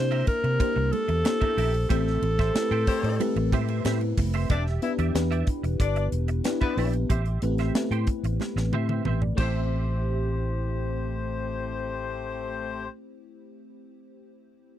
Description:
polished 1980s jazz-funk pop; 92 BPM; 4/4; straight; A minor; A4 = 440 Hz
warm alto saxophone; melody; 0.0-4.1 s; A4 to C5; -28 LUFS; equal; tape echo
FM electric piano with soft pad layer; accompaniment; 0.0-14.8 s; A3 to E5; -31 LUFS; left 2 dB; analog chorus
fingered electric bass; bass; 0.0-12.9 s; E1 to C3; -27 LUFS; equal
semi-hollow electric guitar; riff; 0.1-13.0 s; G4 to G5; -35 LUFS; right 9 dB; ensemble chorus
tight funk drum kit; drums; 0.1-9.5 s; crash cymbal, hi-hat, kick drum, ride cymbal, snare drum, toms; -29 LUFS; equal
congas; percussion; 0.6-10.0 s; -36 LUFS; right 22 dB
mellow horn section; second line; 2.9-12.9 s; A3 to E5; -32 LUFS; left 6 dB
little or no reverb; dry, close 1970s-style studio recording; -24 LUFS; side -11 dB against mid
0.0-4.5 A section; 4.5-9.7 B section; 9.7-12.3 C section
band accent 1.9-4.5; FM electric piano fill 3.5-4.5; drum fill 8.4-9.7
0.0 C7; 1.9 Am7; 4.5 Em7; 7.1 Am7

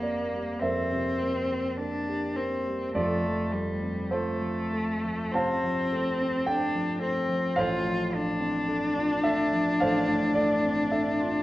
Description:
classical, romantic duo for cello and grand piano; 53 BPM; 4/4; rubato; F major; A4 = 443 Hz
rich cello; melody; 0.0-11.4 s; G3 to F4; -28 LUFS; left 2 dB
dark grand piano; accompaniment; 0.0-11.4 s; F1 to A5; -28 LUFS; right 1 dB
wet recital hall reverb, RT60 1.4 s; worn, warbling old tape, cassette tape, warbly pitch drift; -25 LUFS; side -16 dB against mid
0.0-11.4 A section
0.0 C7/F; 3.0 F; 7.6 F/A

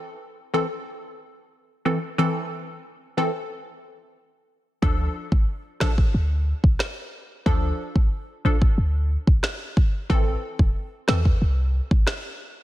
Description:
dancehall; 91 BPM; 4/4; straight; D minor; A4 = 439 Hz
wavetable chord stab; accompaniment; 0.0-11.2 s; E3 to A4; -26 LUFS; equal; phaser
clean 808-style bass; bass; 4.8-12.0 s; E1 to E2; -22 LUFS; equal
afro-pop drum kit; drums; 4.8-12.2 s; kick drum, rim click, snare drum; -21 LUFS; equal
little or no reverb; dense, heavily limited modern master; -21 LUFS; side -15 dB against mid
0.0-12.6 A section
0.0 Am; 4.8 Dm; 10.1 Am

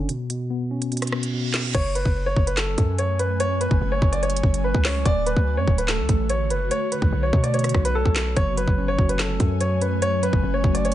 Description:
hip hop, drill; 145 BPM; 4/4; half-time; F# minor; A4 = 440 Hz
mellow tine electric piano; accompaniment; 0.0-1.8, 8.4-10.9 s; B2 to F#4; -27 LUFS; left 1 dB; medium stereo tremolo
hard-hitting 808-style bass; bass; 0.0-10.9 s; D1 to B2; -24 LUFS; equal
drill drum kit; drums; 0.1-10.9 s; crash cymbal, handclaps, hi-hat, kick drum, rim click, snare drum; -22 LUFS; equal
reverse cymbal; sound effects; 1.1-1.7 s; -32 LUFS; right 6 dB
warm upright piano; melody; 1.7-10.9 s; A4 to D5; -25 LUFS; equal
ethereal airy pad; sustained chords; 2.3-10.9 s; D3 to G#5; -30 LUFS; right 1 dB; ensemble chorus, built-in reverb, phaser
digital ambience; nothing above 10.3 kHz; -20 LUFS; side -13 dB against mid
0.0-1.7 A section; 1.7-10.9 B section
break 0.0-1.7; kick muted 0.1-1.7; reverse cymbal 1.1-1.7
0.1 Bsus2; 1.7 F#madd9; 5.1 Dmaj7; 6.7 Bmadd9; 8.4 F#madd9

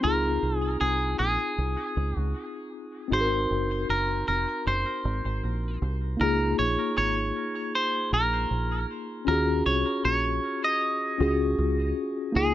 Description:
lovers rock reggae; 78 BPM; 4/4; straight; Db major; A4 = 440 Hz
twangy electric guitar; melody; 0.0-12.5 s; Ab4 to Eb5; -28 LUFS; right 1 dB; tape echo
mellow tine electric piano; accompaniment; 0.0-12.5 s; Bb3 to Bb4; -29 LUFS; left 3 dB; medium stereo tremolo
deep dub fingered electric bass; bass; 0.0-12.5 s; F1 to Eb2; -28 LUFS; right 1 dB
light reverb; nothing above 7.7 kHz; -24 LUFS; side -13 dB against mid
0.0-6.2 A section; 6.2-12.5 B section
0.0 Dbmaj7; 3.1 Ab7; 6.2 Db6; 9.3 Ebm11

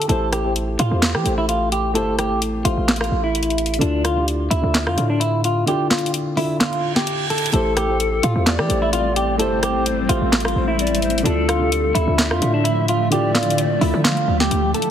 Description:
hip hop, trap; 129 BPM; 4/4; half-time; A minor; A4 = 440 Hz
clean electric guitar; melody; 0.0-14.9 s; D4 to A4; -22 LUFS; equal; lush chorus, ping-pong delay
dark concert grand piano; accompaniment; 0.0-14.9 s; D3 to E5; -25 LUFS; equal
trap drum kit; drums; 0.0-14.9 s; handclaps, hi-hat, rim click, snare drum; -22 LUFS; equal
hard-hitting 808-style bass; bass; 0.1-14.7 s; G1 to E3; -22 LUFS; equal
reverse cymbal; sound effects; 6.8-7.5 s; -27 LUFS; right 5 dB
polished pan flute; second line; 7.5-14.0 s; A4 to E5; -25 LUFS; left 3 dB; ping-pong delay
granular cloud pad; sustained chords; 8.6-14.9 s; D3 to E5; -26 LUFS; equal; built-in reverb
light reverb, digital ambience; heavily compressed radio sound, multiband compression; -17 LUFS; side -9 dB against mid
0.0-7.5 A section; 7.5-14.9 B section
kick muted 5.7-7.5; reverse cymbal 6.8-7.5
0.1 Am7; 3.8 Dmadd9; 7.5 Am7; 11.3 Dmadd9

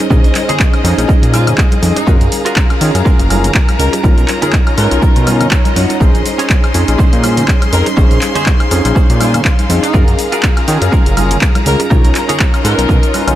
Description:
filtered disco house; 122 BPM; 4/4; swing 56% on 16ths; Bb minor; A4 = 440 Hz
tine electric piano; accompaniment; 0.0-13.4 s; Db4 to C6; -18 LUFS; equal; medium stereo tremolo, phaser, sidechain pumping
rich chamber string section; sustained chords; 0.0-13.4 s; C#4 to C6; -21 LUFS; left 2 dB; sidechain pumping
direct-recorded clean electric guitar; riff; 0.0-13.3 s; Db4 to Ab5; -23 LUFS; right 2 dB; wide subtle chorus, sidechain pumping
punchy analog drum machine; drums; 0.0-13.4 s; handclaps, hi-hat, shaker, woodblock; -19 LUFS; equal
congas and tube shaker; percussion; 0.0-13.4 s; -24 LUFS; left 2 dB; sidechain pumping on perc
fat analog bass; bass; 0.1-13.4 s; Gb1 to Eb3; -14 LUFS; equal; sidechain pumping
electronic kick drum; drums; 0.1-13.0 s; -11 LUFS; equal
mellow horn section; melody; 0.5-13.1 s; Eb4 to Bb4; -23 LUFS; equal; sidechain pumping, analog delay
light reverb, digital ambience; -9 LUFS; side -13 dB against mid
0.0-13.4 A section
clean electric guitar fill 1.1-2.1, 5.3-6.0, 13.1
0.0 Bbm11; 2.1 Gbmaj9; 4.0 Bmaj9#11; 6.0 Bbm11; 9.9 Gbmaj9; 11.9 Bmaj9#11

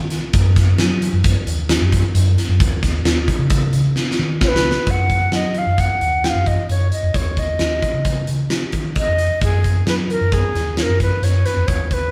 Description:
progressive instrumental, band music in an uneven meter; 132 BPM; 5/4; straight; A4 = 439 Hz
fingered electric bass; bass; 0.0-12.1 s; C#2 to F#3; -20 LUFS; equal
huge arena drum kit; drums; 0.1-12.0 s; hi-hat, kick drum, snare drum; -23 LUFS; equal
wooden flute; melody; 4.4-12.1 s; G#4 to G5; -23 LUFS; equal
wet stone room reverb, RT60 1.3 s; band playing live in one room; -18 LUFS; mono
0.0-4.9 A section; 4.9-12.1 B section
drum fill 4.0-4.9
0.3 D#m; 2.6 C#sus2; 4.9 D#m; 7.1 C#sus2/D#; 9.4 D#madd11

